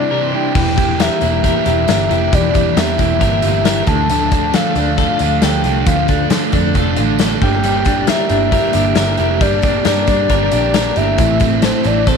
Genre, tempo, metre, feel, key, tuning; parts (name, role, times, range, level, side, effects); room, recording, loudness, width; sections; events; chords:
jangly indie pop; 135 BPM; 4/4; straight; A4 = 440 Hz
soft octave-layered synth lead; melody; 0.0-12.2 s; C5 to A5; -19 LUFS; left 4 dB; chorus, tremolo
overdriven semi-hollow guitar; accompaniment; 0.0-12.2 s; A2 to A4; -19 LUFS; right 14 dB; spring reverb
string machine, violins; sustained chords; 0.0-12.2 s; C3 to A5; -24 LUFS; right 2 dB; ensemble chorus
clean electric guitar; arpeggios; 0.0-12.2 s; A2 to C5; -21 LUFS; left 10 dB; tremolo
vintage muted picked electric bass; bass; 0.6-12.1 s; E1 to D3; -19 LUFS; right 2 dB
big rock drum kit; drums; 0.6-12.2 s; crash cymbal, hi-hat, kick drum, snare drum; -19 LUFS; left 2 dB
tambourine; percussion; 0.6-12.2 s; -32 LUFS; right 15 dB
moderate echo chamber reverb, RT60 1.3 s, small room ambience; 1960s-style stereo with parts hard left and right; -12 LUFS; side -6 dB against mid
0.6-12.2 A section
break 0.0-0.6
0.0 Cadd9; 0.6 Edim; 3.9 Dm; 7.4 Gm; 11.2 Am